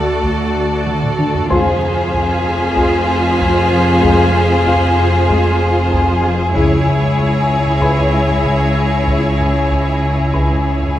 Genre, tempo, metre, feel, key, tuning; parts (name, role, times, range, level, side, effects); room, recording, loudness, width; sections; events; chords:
cinematic, suspense film score; 95 BPM; 4/4; straight; A4 = 442 Hz
clear symphonic violin section; melody; 0.0-11.0 s; C5 to D5; -23 LUFS; left 1 dB
clear symphonic violin section; second line; 0.0-11.0 s; Ab4 to A4; -19 LUFS; left 2 dB
rich studio viola section; accompaniment; 0.0-11.0 s; E4 to F#4; -21 LUFS; right 1 dB
dark French horn section; sustained chords; 0.0-10.6 s; G#3 to F#4; -22 LUFS; left 2 dB
marimba with soft mallets; riff; 0.0-10.8 s; F2 to D4; -20 LUFS; left 1 dB
rich symphonic cello section; bass; 0.0-11.0 s; C#2 to F2; -21 LUFS; right 1 dB
rich symphonic double bass section; bass; 0.0-11.0 s; F1 to D2; -24 LUFS; right 1 dB
deep rumbling drone; drone; 0.0-11.0 s; C#2 to F2; -22 LUFS; equal; built-in reverb, phaser
felt-muted upright piano; texture; 0.0-11.0 s; F4 to E6; -27 LUFS; equal
taiko ensemble; drums; 0.2-11.0 s; -24 LUFS; equal
warm symphonic violin section; texture; 1.5-11.0 s; E6 to B6; -31 LUFS; left 1 dB
wet scoring stage reverb, RT60 1.8 s; vinyl crackle; -12 LUFS; side -12 dB against mid
0.0-11.0 A section
drum fill 0.9-1.5
0.0 D; 1.5 Fm; 6.6 C#m